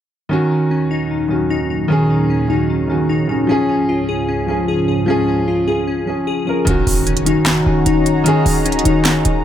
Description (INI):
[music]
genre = hip hop, trap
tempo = 151 BPM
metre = 4/4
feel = half-time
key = Eb minor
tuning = A4 = 438 Hz
[part]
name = dark grand piano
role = accompaniment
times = 0.3-9.4 s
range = Eb3 to Bb4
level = -18 LUFS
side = right 1 dB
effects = none
[part]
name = dark analog pad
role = sustained chords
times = 1.0-9.4 s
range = Db2 to Bb5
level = -22 LUFS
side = right 2 dB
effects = chorus
[part]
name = glassy digital keys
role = arpeggios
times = 0.3-9.4 s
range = Eb3 to Ab4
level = -18 LUFS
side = left 4 dB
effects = chorus, ping-pong delay
[part]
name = short 808-style bass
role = bass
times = 6.7-9.4 s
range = Eb1 to Gb2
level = -20 LUFS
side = right 1 dB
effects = none
[part]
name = trap drum kit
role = drums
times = 6.7-9.3 s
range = handclaps, hi-hat, snare drum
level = -19 LUFS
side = right 1 dB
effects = none
[part]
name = impact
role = sound effects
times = 6.7-8.3 s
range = none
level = -24 LUFS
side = right 1 dB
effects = none
[sound]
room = light reverb, digital ambience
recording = none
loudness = -14 LUFS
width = side -10 dB against mid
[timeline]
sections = 0.3-6.7 A section; 6.7-9.4 B section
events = impact 6.7-8.3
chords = 0.3 Ebm7; 3.5 Db; 6.7 Ebm7